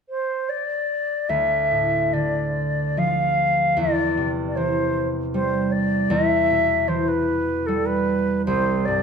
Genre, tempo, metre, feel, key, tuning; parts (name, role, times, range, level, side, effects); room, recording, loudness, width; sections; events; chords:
celtic folk, Celtic slow air; 70-80 BPM; 3/4; rubato; D dorian; A4 = 440 Hz
wooden flute; melody; 0.1-9.0 s; A4 to F5; -22 LUFS; equal
concert harp; accompaniment; 1.3-9.0 s; C2 to G3; -22 LUFS; equal
moderate recital hall reverb, RT60 1.3 s; -19 LUFS; side -6 dB against mid
0.0-1.3 A section; 1.3-9.0 B section
0.0 N.C.; 1.3 Dm; 3.8 C/E; 6.1 Em; 8.5 C5